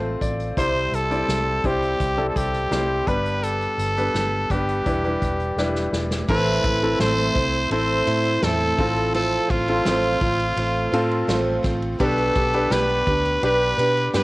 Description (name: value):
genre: piano-driven pop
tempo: 84 BPM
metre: 4/4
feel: straight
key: A minor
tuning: A4 = 440 Hz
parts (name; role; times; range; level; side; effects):
- clear concert grand piano; accompaniment; 0.0-14.2 s; G2 to A5; -25 LUFS; left 1 dB; cassette tape, plate reverb
- vintage muted fingered electric bass; bass; 0.0-14.2 s; E1 to B2; -27 LUFS; equal; none
- unplugged drum kit; drums; 0.2-14.2 s; crash cymbal, hi-hat, kick drum, ride cymbal, snare drum; -28 LUFS; equal; cassette tape
- growling trumpet; melody; 0.6-14.2 s; F4 to C5; -23 LUFS; equal; cassette tape, plate reverb
- picked plugged-in steel-string acoustic guitar; riff; 6.3-14.2 s; A2 to C5; -25 LUFS; right 2 dB; cassette tape
room: light reverb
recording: home recording on cassette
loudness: -19 LUFS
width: side -20 dB against mid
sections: 0.0-6.3 A section; 6.3-14.2 B section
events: grand piano fill 0.0-0.6; drum fill 5.6-6.3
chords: 0.0 F/A; 0.6 C; 3.1 G; 4.9 Em7; 6.3 Am; 8.8 F/A; 12.0 G/B